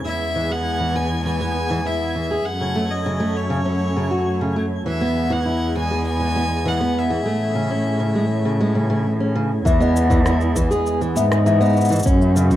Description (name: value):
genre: folktronica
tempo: 100 BPM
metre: 4/4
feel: straight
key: E major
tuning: A4 = 437 Hz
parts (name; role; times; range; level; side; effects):
- warm analog pad; sustained chords; 0.0-12.6 s; C#3 to A4; -28 LUFS; equal; chorus, plate reverb
- muted cello; bass; 0.0-12.6 s; E2 to A2; -21 LUFS; equal; none
- twinkling granular texture; texture; 0.0-9.7 s; G#6; -37 LUFS; equal; built-in reverb, plate reverb
- bright violin; melody; 0.1-9.1 s; C#5 to G#5; -26 LUFS; left 1 dB; tape echo, plate reverb
- fingerpicked steel-string acoustic guitar; arpeggios; 0.1-12.6 s; C#3 to G#4; -23 LUFS; equal; vintage 12-bit sampler grit, low-pass filter, tape echo, plate reverb
- small celesta; second line; 9.7-12.1 s; D#5 to E5; -24 LUFS; left 5 dB; ping-pong delay, plate reverb
- electronic kick drum; drums; 9.7-12.6 s; none; -20 LUFS; equal; none
- electronic shaker and rim click; drums; 9.7-12.6 s; none; -29 LUFS; equal; low-pass filter on perc, low-pass filter on snare, low-pass filter on room
room: moderate studio reverb, RT60 0.6 s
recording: rough home demo mix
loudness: -17 LUFS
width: side -13 dB against mid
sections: 0.0-9.7 A section; 9.7-12.6 B section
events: none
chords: 0.1 E; 2.5 F#m; 4.9 E; 7.3 Amaj7; 9.7 E; 12.1 F#m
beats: | 0.06 0.66 1.26 1.86 | 2.46 3.06 3.66 4.26 | 4.86 5.46 6.06 6.66 | 7.26 7.86 8.46 9.06 | 9.66 10.26 10.86 11.46 | 12.06